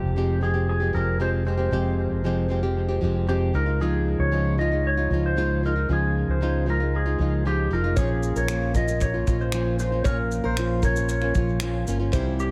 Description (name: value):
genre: acoustic pop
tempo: 115 BPM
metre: 4/4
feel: straight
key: unclear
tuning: A4 = 439 Hz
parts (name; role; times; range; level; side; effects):
- clean lap steel guitar; melody; 0.0-12.5 s; G4 to Eb5; -31 LUFS; equal; tape echo
- nylon-string guitar; accompaniment; 0.0-12.5 s; F2 to G4; -29 LUFS; equal; tape echo
- mellow fretless electric bass; bass; 0.0-12.5 s; F1 to Db2; -27 LUFS; equal; subtle chorus
- fingerpicked plugged-in steel-string acoustic guitar; arpeggios; 8.0-12.3 s; Bb4 to Db5; -36 LUFS; equal; none
- loose indie drum kit; drums; 8.0-12.5 s; finger snaps, kick drum, shaker; -30 LUFS; equal; none
room: light reverb, small room ambience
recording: echo-heavy mix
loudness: -24 LUFS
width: mono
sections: 0.0-12.5 A section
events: none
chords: 0.0 Fmadd9; 3.5 Dbadd9; 8.0 Bbm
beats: 0.16 0.68 1.20 | 1.72 2.24 2.76 3.29 | 3.81 4.33 4.85 5.37 | 5.89 6.41 6.93 7.45 | 7.97 8.49 9.01 9.53 | 10.05 10.57 11.09 11.61 | 12.13